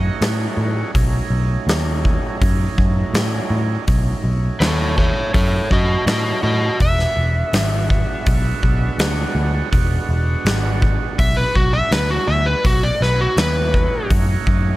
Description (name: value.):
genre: blues rock power trio and southern rock.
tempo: 82 BPM.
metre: 4/4.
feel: straight.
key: B mixolydian.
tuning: A4 = 440 Hz.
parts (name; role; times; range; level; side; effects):
overdriven slide guitar; melody; 0.0-0.2, 4.6-14.1 s; F#4 to E5; -20 LUFS; left 1 dB; slapback echo.
overdriven tonewheel organ; sustained chords; 0.0-14.8 s; F#3 to F#4; -27 LUFS; right 4 dB; slow rotary speaker.
vintage muted picked electric bass; bass; 0.0-14.7 s; E1 to A2; -19 LUFS; equal; none.
huge arena drum kit; drums; 0.2-14.6 s; hi-hat, kick drum, snare drum; -20 LUFS; equal; none.
room: little or no reverb.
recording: none.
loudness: -16 LUFS.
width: side -17 dB against mid.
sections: 0.0-14.8 A section.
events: electric slide guitar solo 0.0-14.8.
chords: 0.0 B7; 6.8 E7; 12.7 B7.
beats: 0.20 | 0.94 1.67 2.41 3.14 | 3.87 4.61 5.34 6.07 | 6.80 7.54 8.27 9.00 | 9.73 10.46 11.19 11.92 | 12.65 13.38 14.11.